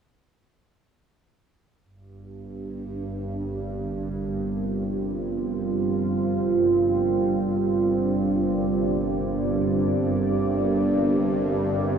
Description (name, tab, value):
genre	dark ambient drone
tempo	free time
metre	none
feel	none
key	G minor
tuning	A4 = 438 Hz
part	deep dark ambient pad	sustained chords	3.4-12.0 s	G3 to D5	-24 LUFS	right 2 dB	chorus, built-in reverb
part	bowed-like drone	drone	2.1-12.0 s	G1 to G2	-26 LUFS	right 1 dB	built-in reverb, phaser
room	wet huge ambient reverb, RT60 7.7 s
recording	studio reverb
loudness	-22 LUFS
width	side -7 dB against mid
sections	1.8-12.0 A section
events	filter sweep on synth drone 1.8-12.0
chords	1.8 Gm7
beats	free time